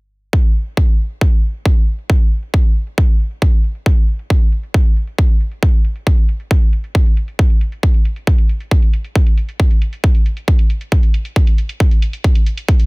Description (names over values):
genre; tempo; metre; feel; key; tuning
uplifting trance; 136 BPM; 4/4; straight; none; none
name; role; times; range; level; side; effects
electronic hi-hat; drums; 0.3-12.9 s; none; -35 LUFS; right 2 dB; low-pass filter on hats
electronic kick drum; drums; 0.3-12.8 s; none; -12 LUFS; equal; none
room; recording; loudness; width
little or no reverb; dense, heavily limited modern master; -13 LUFS; side -31 dB against mid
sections
0.3-12.9 A section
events
filter sweep on drum 0.3-12.9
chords
none